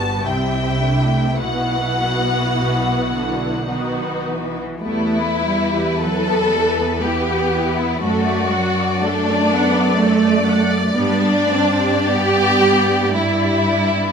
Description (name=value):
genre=classical, slow romantic movement for string orchestra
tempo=48-63 BPM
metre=3/4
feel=rubato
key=E minor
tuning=A4 = 440 Hz
part: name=warm studio violin section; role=melody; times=0.0-14.1 s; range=B4 to A5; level=-25 LUFS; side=left 2 dB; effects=none
part: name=warm symphonic violin section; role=second line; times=0.0-14.1 s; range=D4 to E5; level=-20 LUFS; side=left 2 dB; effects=none
part: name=warm studio viola section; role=accompaniment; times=0.0-14.1 s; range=G3 to F#5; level=-23 LUFS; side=right 2 dB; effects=none
part: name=clear chamber double bass section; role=bass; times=0.0-14.1 s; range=G1 to G2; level=-23 LUFS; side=right 2 dB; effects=none
part: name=rich chamber cello section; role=bass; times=0.0-14.1 s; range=G2 to C4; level=-23 LUFS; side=right 1 dB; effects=none
room=light reverb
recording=close, detailed microphones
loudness=-15 LUFS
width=side -6 dB against mid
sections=0.0-4.8 A section; 4.8-14.1 B section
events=none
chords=0.3 C; 1.4 Bsus4; 3.7 B; 4.8 Em; 8.0 D/F#; 11.0 G